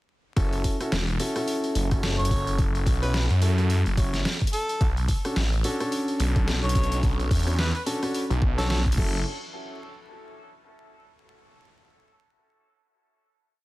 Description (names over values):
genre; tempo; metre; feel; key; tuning
glitch hop; 108 BPM; 4/4; swing 58% on 16ths; F# minor; A4 = 438 Hz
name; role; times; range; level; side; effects
dark grand piano; stabs; 0.4-9.2 s; C#4 to C#5; -31 LUFS; equal; sidechain pumping, dub echo
phased detuned saw bass; bass; 0.4-9.2 s; E1 to F#2; -24 LUFS; equal; phaser, tube saturation
dubstep drum kit; drums; 0.4-9.1 s; crash cymbal, hi-hat, rim click, snare drum; -32 LUFS; equal; overdrive
electronic kick drum; drums; 0.4-9.1 s; none; -24 LUFS; equal; overdrive
mellow harmonica; melody; 2.2-8.8 s; A4 to C#5; -34 LUFS; equal; dub echo
room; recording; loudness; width
little or no reverb; dense, heavily limited modern master, vinyl crackle; -22 LUFS; side -18 dB against mid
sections
0.4-9.3 drop; 9.3-11.5 final hit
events
drop 0.4-9.3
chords
0.4 F#m7; 4.8 Bm7; 9.0 F#m7; 9.3 N.C.